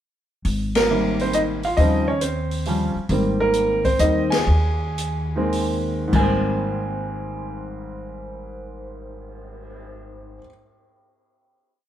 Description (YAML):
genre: jazz piano trio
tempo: 95-136 BPM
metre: 3/4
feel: swing 68% on 8ths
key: Ab major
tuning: A4 = 440 Hz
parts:
  - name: upright bass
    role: bass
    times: 0.4-10.4 s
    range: Ab1 to Eb2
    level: -24 LUFS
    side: equal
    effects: none
  - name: open jazz drum kit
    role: drums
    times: 0.4-9.8 s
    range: crash cymbal, cymbal swell, hi-hat, kick drum, ride cymbal, snare drum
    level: -28 LUFS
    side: left 2 dB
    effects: none
  - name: warm concert grand piano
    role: melody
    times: 0.8-10.5 s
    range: Ab2 to Ab5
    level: -22 LUFS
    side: right 1 dB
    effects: none
room: light reverb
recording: band playing live in one room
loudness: -19 LUFS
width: side -11 dB against mid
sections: 0.5-6.1 A section; 6.1-9.9 final chord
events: band accent 0.7, 4.2; slowing down 3.1-6.1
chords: 0.5 Abmaj9; 1.8 Eb13; 3.1 Abmaj9